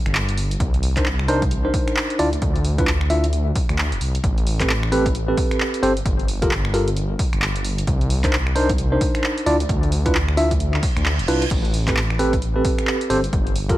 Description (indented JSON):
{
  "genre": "UK garage, two-step garage",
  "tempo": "132 BPM",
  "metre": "4/4",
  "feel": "swing 61% on 16ths",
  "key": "unclear",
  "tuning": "A4 = 440 Hz",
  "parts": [
    { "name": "dark detuned saw bass", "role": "bass", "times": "0.1-13.7 s", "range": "D1 to D2", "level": "-22 LUFS", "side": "equal", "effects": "none" },
    { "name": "punchy analog drum machine", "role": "drums", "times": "0.1-13.8 s", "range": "crash cymbal, finger snaps, handclaps, hi-hat", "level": "-26 LUFS", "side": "equal", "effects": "none" },
    { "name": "electronic kick drum", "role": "drums", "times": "0.6-13.8 s", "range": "none", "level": "-22 LUFS", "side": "equal", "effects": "none" },
    { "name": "tine electric piano", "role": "stabs", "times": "1.0-13.8 s", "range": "C4 to E5", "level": "-22 LUFS", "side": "equal", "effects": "medium tremolo, ping-pong delay" },
    { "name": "reverse cymbal", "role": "sound effects", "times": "10.8-11.5 s", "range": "none", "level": "-31 LUFS", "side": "right 5 dB", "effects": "none" }
  ],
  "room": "little or no reverb",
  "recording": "vinyl crackle",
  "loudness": "-18 LUFS",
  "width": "side -15 dB against mid",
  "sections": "0.0-13.8 A section",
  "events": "reverse cymbal 10.8-11.5",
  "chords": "0.0 N.C.; 0.6 Cm9; 2.2 Dmadd9; 4.2 Am9; 6.1 Gm9; 7.9 Cm9; 9.5 Dmadd9; 11.5 Am9"
}